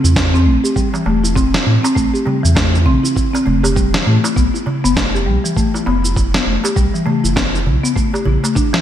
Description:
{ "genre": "organic downtempo", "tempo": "100 BPM", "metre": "4/4", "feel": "swing 60% on 16ths", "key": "A minor", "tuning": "A4 = 444 Hz", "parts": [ { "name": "buzzing marimba with soft mallets", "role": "arpeggios", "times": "0.0-8.8 s", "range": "E3 to G4", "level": "-17 LUFS", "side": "left 1 dB", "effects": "ping-pong delay" }, { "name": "warm sub bass", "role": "bass", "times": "0.0-8.4 s", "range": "E1 to A2", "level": "-16 LUFS", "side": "equal", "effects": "sidechain pumping" }, { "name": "electronic cabasa and snare drum", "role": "drums", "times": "0.0-8.8 s", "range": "none", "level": "-20 LUFS", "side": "right 1 dB", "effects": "gated reverb" }, { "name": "electronic kick drum", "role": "drums", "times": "0.2-8.7 s", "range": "none", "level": "-19 LUFS", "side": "equal", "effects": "none" }, { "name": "darbuka", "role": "percussion", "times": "0.9-8.5 s", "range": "none", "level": "-24 LUFS", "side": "right 2 dB", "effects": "none" } ], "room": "moderate lush hall reverb, RT60 1.7 s, digital ambience", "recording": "bright 1980s-style digital production", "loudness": "-13 LUFS", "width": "side -10 dB against mid", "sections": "0.0-8.8 A section", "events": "none", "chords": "0.0 Am7; 4.4 B7(b5, no3)" }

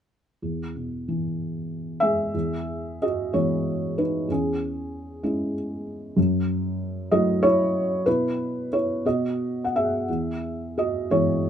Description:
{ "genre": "classical, lyrical solo piano", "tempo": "57-65 BPM (dotted quarters)", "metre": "6/8", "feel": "rubato", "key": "E major", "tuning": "A4 = 440 Hz", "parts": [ { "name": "felt-muted upright piano", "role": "solo", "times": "0.4-11.5 s", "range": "E2 to F#5", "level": "-23 LUFS", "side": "equal", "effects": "none" } ], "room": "little or no reverb", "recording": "close, detailed microphones", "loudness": "-23 LUFS", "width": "side -9 dB against mid", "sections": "0.4-2.3 A section; 2.3-11.5 B section", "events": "none", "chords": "0.4 E; 4.3 C#m/E; 6.2 F#m7; 8.1 E5/B; 9.1 B; 10.1 E" }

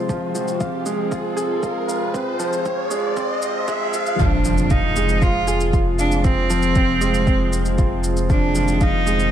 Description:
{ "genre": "piano and strings electronica", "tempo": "117 BPM", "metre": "4/4", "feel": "straight", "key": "F dorian", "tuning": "A4 = 440 Hz", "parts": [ { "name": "lush unison pad", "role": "sustained chords", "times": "0.0-9.3 s", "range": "C3 to F4", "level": "-28 LUFS", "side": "equal", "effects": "chorus, sidechain pumping" }, { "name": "felt-muted upright piano", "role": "riff", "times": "0.0-9.3 s", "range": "F3 to F5", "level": "-23 LUFS", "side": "equal", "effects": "ping-pong delay" }, { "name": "warm sub bass", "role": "bass", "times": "0.0-9.3 s", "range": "F1", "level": "-23 LUFS", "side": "equal", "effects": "sidechain pumping, high-pass filter" }, { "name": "riser and impact", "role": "sound effects", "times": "0.0-6.2 s", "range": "none", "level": "-26 LUFS", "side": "equal", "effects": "none" }, { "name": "electronic kick drum", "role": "drums", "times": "0.1-8.9 s", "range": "none", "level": "-20 LUFS", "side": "equal", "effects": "none" }, { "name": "shaker", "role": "drums", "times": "0.1-9.3 s", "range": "none", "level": "-33 LUFS", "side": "left 1 dB", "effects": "none" }, { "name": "bright cello", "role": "melody", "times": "4.2-9.3 s", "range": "C4 to F4", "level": "-22 LUFS", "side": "right 2 dB", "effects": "none" } ], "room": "light reverb", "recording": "dark, warm production, high-pass filter", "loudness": "-17 LUFS", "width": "side -10 dB against mid", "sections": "0.0-4.2 A section; 4.2-9.3 B section", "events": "build-up 0.0-4.2; riser 0.0-4.2; filter sweep 0.0-4.2; drop 4.2-9.3; impact 4.2-6.2", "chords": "0.0 Fm" }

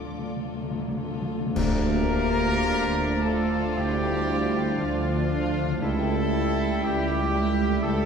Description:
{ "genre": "classical, slow romantic movement for symphony orchestra", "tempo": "47-60 BPM", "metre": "4/4", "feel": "rubato", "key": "D minor", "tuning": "A4 = 442 Hz", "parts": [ { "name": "dark studio violin section", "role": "melody", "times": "0.0-8.1 s", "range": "F5 to D6", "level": "-38 LUFS", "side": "left 8 dB", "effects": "none" }, { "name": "warm studio violin section", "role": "second line", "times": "0.0-8.1 s", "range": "E4 to A4", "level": "-37 LUFS", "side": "left 2 dB", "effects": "none" }, { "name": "dark studio viola section", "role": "accompaniment", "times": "0.0-8.1 s", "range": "A3 to D5", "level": "-37 LUFS", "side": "left 1 dB", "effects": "none" }, { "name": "concert harp", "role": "arpeggios", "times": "0.0-8.1 s", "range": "C#3 to G4", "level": "-38 LUFS", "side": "left 8 dB", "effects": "none" }, { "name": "dark studio cello section", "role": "bass", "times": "0.0-8.1 s", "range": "C#2 to D3", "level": "-30 LUFS", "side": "right 3 dB", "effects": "none" }, { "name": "warm studio double bass section", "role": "bass", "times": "0.0-8.1 s", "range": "C#2 to D2", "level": "-31 LUFS", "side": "right 2 dB", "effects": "none" }, { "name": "timpani", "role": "percussion", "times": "0.0-3.2 s", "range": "D3", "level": "-31 LUFS", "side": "left 3 dB", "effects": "none" }, { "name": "mellow French horn section", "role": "sustained chords", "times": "1.5-8.1 s", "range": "F3 to Bb3", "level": "-31 LUFS", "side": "left 1 dB", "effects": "none" }, { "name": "clear oboe", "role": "second line", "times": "1.6-8.1 s", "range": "D5 to E5", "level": "-37 LUFS", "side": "equal", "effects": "none" }, { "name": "mellow clarinet", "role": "second line", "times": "1.6-8.1 s", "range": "D4 to G4", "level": "-34 LUFS", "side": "equal", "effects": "none" }, { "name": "silver concert flute", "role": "second line", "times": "1.6-8.1 s", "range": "F5 to Bb5", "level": "-36 LUFS", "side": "left 3 dB", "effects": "none" }, { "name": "mellow bassoon", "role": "accompaniment", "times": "1.6-8.1 s", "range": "F3 to G3", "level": "-35 LUFS", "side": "left 1 dB", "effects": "none" }, { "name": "clear trumpet section", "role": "stabs", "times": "1.6-8.1 s", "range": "F4 to Bb4", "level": "-31 LUFS", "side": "equal", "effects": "none" }, { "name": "warm tuba", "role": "bass", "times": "1.6-8.1 s", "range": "C#2 to D2", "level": "-31 LUFS", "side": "right 2 dB", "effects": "none" }, { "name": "clash cymbals and concert bass drum", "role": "percussion", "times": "1.6-3.7 s", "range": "none", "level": "-34 LUFS", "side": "left 1 dB", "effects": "none" } ], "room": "wet scoring stage reverb, RT60 1.9 s", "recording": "heard from further back in the room", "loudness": "-23 LUFS", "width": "side -6 dB against mid", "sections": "0.0-1.6 A section; 1.6-8.1 B section", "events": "timpani fill 0.0-1.6; band accent 1.6-2.7", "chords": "0.0 Dm; 5.8 A7/C#" }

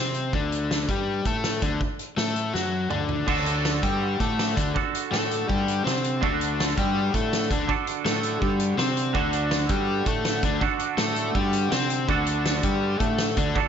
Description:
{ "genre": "indie rock", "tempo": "164 BPM", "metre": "4/4", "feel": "straight", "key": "D major", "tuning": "A4 = 440 Hz", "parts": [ { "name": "overdriven electric guitar", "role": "riff", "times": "0.0-13.6 s", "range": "D3 to C5", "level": "-26 LUFS", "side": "left 4 dB", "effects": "none" }, { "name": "fuzz fingered electric bass", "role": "bass", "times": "0.0-13.5 s", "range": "D2 to C3", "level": "-30 LUFS", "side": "right 1 dB", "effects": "overdrive" }, { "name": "loose indie drum kit", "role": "drums", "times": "0.1-13.6 s", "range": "crash cymbal, hi-hat, kick drum, snare drum, toms", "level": "-28 LUFS", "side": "right 1 dB", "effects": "none" }, { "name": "twangy electric guitar", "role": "riff", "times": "3.3-13.7 s", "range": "D3 to A4", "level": "-28 LUFS", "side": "right 10 dB", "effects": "lush chorus, tape echo" } ], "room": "moderate recital hall reverb, RT60 1.4 s, small room ambience", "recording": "big arena sound, nothing above 7.7 kHz", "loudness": "-22 LUFS", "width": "side -8 dB against mid", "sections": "0.0-3.3 A section; 3.3-13.7 B section", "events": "drum fill 2.5-3.3", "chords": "0.0 D" }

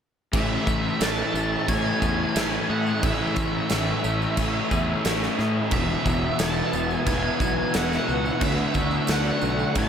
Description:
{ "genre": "rock, shoegaze and dream pop", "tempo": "89 BPM", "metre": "4/4", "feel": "straight", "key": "A major", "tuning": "A4 = 437 Hz", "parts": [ { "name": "glassy FM pad", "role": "sustained chords", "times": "1.3-9.9 s", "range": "A4 to E6", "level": "-34 LUFS", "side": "left 1 dB", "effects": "ensemble chorus, built-in reverb, phaser" }, { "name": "twangy electric guitar", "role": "arpeggios", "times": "0.3-9.9 s", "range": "E3 to G#4", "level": "-36 LUFS", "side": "left 7 dB", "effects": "wide subtle chorus, analog delay" }, { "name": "raw garage guitar", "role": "riff", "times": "0.3-9.9 s", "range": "E2 to F#4", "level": "-30 LUFS", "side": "right 8 dB", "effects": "overdrive, reverse reverb" }, { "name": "thick fuzz guitar", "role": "riff", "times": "0.3-9.9 s", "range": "E2 to D4", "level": "-27 LUFS", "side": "left 6 dB", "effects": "distortion, analog chorus" }, { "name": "fuzz fingered electric bass", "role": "bass", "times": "0.3-9.9 s", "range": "E1 to A2", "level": "-29 LUFS", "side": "right 1 dB", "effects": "overdrive" }, { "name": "gated 80s drum kit", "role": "drums", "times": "0.3-9.9 s", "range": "crash cymbal, kick drum, snare drum", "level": "-28 LUFS", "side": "right 1 dB", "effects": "none" }, { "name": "tambourine", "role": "percussion", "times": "0.3-9.9 s", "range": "none", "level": "-41 LUFS", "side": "right 8 dB", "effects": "none" }, { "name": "octave-fuzz lead guitar", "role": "melody", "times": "0.4-9.9 s", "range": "E5 to A5", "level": "-30 LUFS", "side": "right 1 dB", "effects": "distortion, analog delay" } ], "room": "moderate huge ambient reverb, RT60 8.7 s", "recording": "dreamy mix soaked in reverb", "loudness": "-21 LUFS", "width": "side -8 dB against mid", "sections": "0.3-9.9 A section", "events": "none", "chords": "0.3 Amaj7; 5.7 Esus2; 8.4 Dmaj7" }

